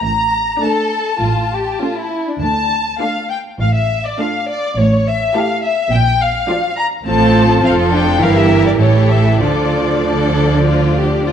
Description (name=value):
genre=quick classical-period movement for string orchestra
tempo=102 BPM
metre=4/4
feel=uneven beats, rubato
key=D minor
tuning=A4 = 440 Hz
part: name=rich chamber violin section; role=melody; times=0.0-11.3 s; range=C#5 to Bb5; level=-18 LUFS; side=left 3 dB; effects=none
part: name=rich chamber double bass section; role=bass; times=0.0-11.3 s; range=F1 to D2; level=-18 LUFS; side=right 2 dB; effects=none
part: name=warm chamber cello section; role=bass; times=0.0-11.3 s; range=F2 to D3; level=-19 LUFS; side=right 2 dB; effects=none
part: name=rich chamber violin section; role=second line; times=0.6-11.3 s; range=D4 to D5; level=-20 LUFS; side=left 2 dB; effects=none
part: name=clear chamber viola section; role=accompaniment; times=0.6-11.3 s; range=E3 to E4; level=-18 LUFS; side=right 1 dB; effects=none
room=moderate scoring stage reverb, RT60 1.4 s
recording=dark, warm production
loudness=-12 LUFS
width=side -8 dB against mid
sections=0.0-11.3 A section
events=none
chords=0.0 D5/A; 1.2 A; 2.4 Dm; 4.8 A5; 5.9 Bb; 7.1 F/A; 8.2 Edim/G; 8.8 A7; 9.4 Dm